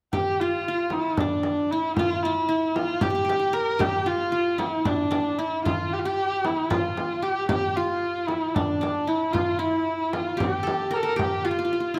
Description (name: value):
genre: Turkish makam ensemble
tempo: 228 BPM (eighths)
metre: 7/8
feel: straight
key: unclear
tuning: A4 = 439 Hz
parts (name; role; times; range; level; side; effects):
- rich kamancheh; melody; 0.1-12.0 s; D4 to Bb4; -27 LUFS; equal; none
- qanun; second line; 0.1-12.0 s; D4 to Bb4; -32 LUFS; equal; none
- frame drum; percussion; 0.1-11.3 s; none; -32 LUFS; equal; none
room: wet recital hall reverb, RT60 1.5 s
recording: close, detailed microphones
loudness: -25 LUFS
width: mono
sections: 0.1-12.0 A section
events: none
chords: none